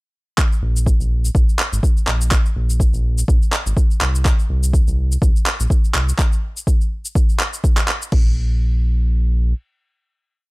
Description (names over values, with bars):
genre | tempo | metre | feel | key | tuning
afro house | 124 BPM | 4/4 | swing 55% on 16ths | unclear | A4 = 440 Hz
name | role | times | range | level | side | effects
deep house drum kit | drums | 0.4-8.2 s | crash cymbal, handclaps, shaker | -22 LUFS | equal | none
electronic kick drum | drums | 0.4-8.2 s | none | -16 LUFS | equal | none
round analog bass | bass | 0.6-9.5 s | Ab1 to C2 | -18 LUFS | equal | sidechain pumping
room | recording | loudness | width
little or no reverb | dry, gritty hardware recording | -15 LUFS | side -24 dB against mid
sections
0.4-8.1 groove; 8.1-10.5 final note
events
none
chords
none